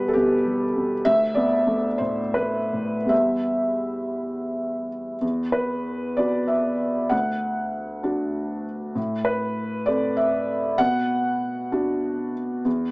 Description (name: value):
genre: neoclassical minimalist piano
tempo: 53-66 BPM (dotted quarters)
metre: 6/8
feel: rubato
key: E minor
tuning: A4 = 440 Hz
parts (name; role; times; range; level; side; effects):
- felt-muted upright piano; solo; 0.0-12.9 s; D2 to F#5; -21 LUFS; equal; none
room: light reverb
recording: small speaker sound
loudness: -21 LUFS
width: side -27 dB against mid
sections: 0.0-5.2 A section; 5.2-12.9 B section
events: none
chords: 0.0 Em; 1.1 Bm7/D; 3.1 Em; 5.2 Esus2; 7.1 D; 9.0 Amadd9; 10.8 Bm